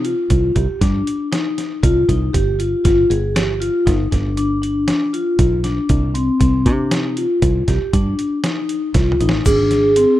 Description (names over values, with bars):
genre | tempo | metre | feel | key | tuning
progressive instrumental, band music in an uneven meter | 118 BPM | 7/4 | straight | unclear | A4 = 439 Hz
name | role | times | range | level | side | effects
vibraphone with soft mallets | arpeggios | 0.0-10.2 s | C4 to Ab4 | -18 LUFS | left 2 dB | none
fingered electric bass | bass | 0.0-10.0 s | G1 to C3 | -19 LUFS | right 1 dB | none
trip hop sampler-style drum kit | drums | 0.0-10.1 s | crash cymbal, hi-hat, kick drum, snare drum, toms | -20 LUFS | right 1 dB | none
vibraphone with soft mallets | second line | 9.5-10.2 s | Ab4 | -13 LUFS | right 2 dB | none
tube shaker | percussion | 9.5-9.7 s | none | -33 LUFS | left 5 dB | none
room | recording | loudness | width
small room ambience | rough home demo mix | -15 LUFS | side -14 dB against mid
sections
0.0-9.5 A section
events
drum fill 9.0-9.5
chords
0.0 Cm; 2.3 G5; 5.9 Cm; 9.5 Ab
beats
0.31 0.82 1.33 1.84 | 2.35 2.85 3.36 3.87 4.38 4.89 5.40 | 5.91 6.41 6.92 7.43 7.94 8.44 8.95 | 9.46 9.97